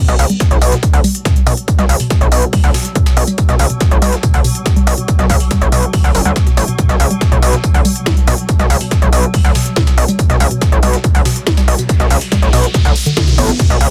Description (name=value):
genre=driving peak-time techno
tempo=141 BPM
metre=4/4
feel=straight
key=B minor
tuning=A4 = 445 Hz
part: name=swarming drone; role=drone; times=1.6-13.6 s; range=B2 to F#3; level=-28 LUFS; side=equal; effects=none
part: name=gritty driven synth bass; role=bass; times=0.1-13.9 s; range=F#1 to D2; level=-16 LUFS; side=equal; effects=sidechain pumping
part: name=breakbeat sampler-style drum kit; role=drums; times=0.1-13.9 s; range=hi-hat, snare drum, tambourine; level=-29 LUFS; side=equal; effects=sidechain pumping on perc, high-pass filter on perc, high-pass filter on snare, sidechain pumping on hats, high-pass filter on hats
part: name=techno drum kit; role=drums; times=0.1-13.9 s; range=crash cymbal, hi-hat, snare drum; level=-24 LUFS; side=equal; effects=sidechain pumping on hats, sidechain pumping on cymbals
part: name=woody wave-folded pluck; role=riff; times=0.3-13.6 s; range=B2 to B3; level=-22 LUFS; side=equal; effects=chorus, tube saturation, sidechain pumping, tape echo
part: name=electronic kick drum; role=drums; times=0.4-13.7 s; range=none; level=-15 LUFS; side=equal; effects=none
part: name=riser and impact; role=sound effects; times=11.4-13.9 s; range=none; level=-27 LUFS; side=equal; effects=none
room=digital ambience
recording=dense, heavily limited modern master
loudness=-13 LUFS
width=mono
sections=0.0-13.6 A section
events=filter sweep on synth arpeggio sound 0.0-13.6; riser 11.4-13.6; band accent 13.2; impact 13.6-13.9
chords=0.0 B5